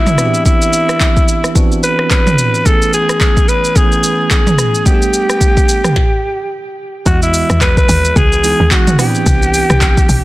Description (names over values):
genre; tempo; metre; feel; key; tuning
amapiano; 109 BPM; 4/4; swing 58% on 16ths; unclear; A4 = 440 Hz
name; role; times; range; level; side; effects
growling alto saxophone; melody; 0.0-10.2 s; E4 to B4; -15 LUFS; equal; digital delay
bell-like tine electric piano; accompaniment; 0.0-10.2 s; E3 to D#5; -19 LUFS; right 3 dB; medium stereo tremolo
glitchy drum kit; drums; 0.1-10.2 s; handclaps, hi-hat, kick drum, rim click, shaker, snare drum, toms; -12 LUFS; equal; none
tight log drum bass; bass; 7.1-10.2 s; B1 to E2; -14 LUFS; equal; none
room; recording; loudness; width
digital ambience; dense, heavily limited modern master; -9 LUFS; side -18 dB against mid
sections
0.0-7.1 A section; 7.1-10.2 B section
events
stop 6.0-7.1; drop 7.1-10.2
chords
0.2 Cmaj9; 2.7 Amaj9; 4.9 Gadd9; 7.1 Emaj9; 9.0 Cmaj9